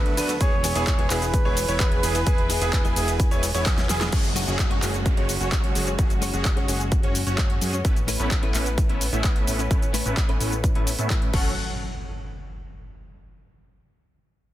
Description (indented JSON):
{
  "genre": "EDM, festival progressive house",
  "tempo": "129 BPM",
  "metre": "4/4",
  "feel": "straight",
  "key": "F# minor",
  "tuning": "A4 = 440 Hz",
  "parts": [
    { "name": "trumpet with bucket mute", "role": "melody", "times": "0.0-3.7 s", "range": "B4 to C#5", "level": "-29 LUFS", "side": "right 1 dB", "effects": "tape echo" },
    { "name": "direct-recorded clean electric guitar", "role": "accompaniment", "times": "0.0-11.5 s", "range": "A2 to C#5", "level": "-33 LUFS", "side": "left 2 dB", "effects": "ensemble chorus, sidechain pumping, tape echo" },
    { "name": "dark studio string section", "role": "sustained chords", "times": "0.0-11.6 s", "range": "D3 to F#5", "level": "-34 LUFS", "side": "equal", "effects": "sidechain pumping" },
    { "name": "bright baby grand piano", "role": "arpeggios", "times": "0.0-4.0 s", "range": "G#4 to E5", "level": "-31 LUFS", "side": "right 2 dB", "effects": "sidechain pumping, tape echo" },
    { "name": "supersaw chords", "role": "riff", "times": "0.0-11.5 s", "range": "A3 to E5", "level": "-32 LUFS", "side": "right 1 dB", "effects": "wide subtle chorus, cassette tape, sidechain pumping, low-pass filter, tape echo" },
    { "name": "fat analog bass", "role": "bass", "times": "0.0-11.6 s", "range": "E1 to A2", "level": "-28 LUFS", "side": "equal", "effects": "tube saturation, sidechain pumping" },
    { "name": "big-room dance drum kit", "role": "drums", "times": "0.1-11.4 s", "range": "crash cymbal, handclaps, hi-hat, ride cymbal, shaker, snare drum", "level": "-29 LUFS", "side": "equal", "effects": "overdrive" },
    { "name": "electronic kick drum", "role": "drums", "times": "0.4-11.4 s", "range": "none", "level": "-22 LUFS", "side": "equal", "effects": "overdrive" },
    { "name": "downlifter and impact", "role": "sound effects", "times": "4.1-7.8, 11.4-13.2 s", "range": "none", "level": "-35 LUFS", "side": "equal", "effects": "none" }
  ],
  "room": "little or no reverb",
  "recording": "dense, heavily limited modern master",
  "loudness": "-20 LUFS",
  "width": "side -14 dB against mid",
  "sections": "0.0-4.1 A section; 4.1-11.6 B section; 11.6-13.4 C section",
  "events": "drop 0.0-4.1; drum fill 3.7-4.1; band accent 4.0; filter sweep on supersaw synth 4.1-11.6; filter sweep on analog synth bass 4.1-11.6",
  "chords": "0.4 E; 4.1 F#sus2; 7.8 Aadd9; 11.3 F#m; 11.6 N.C."
}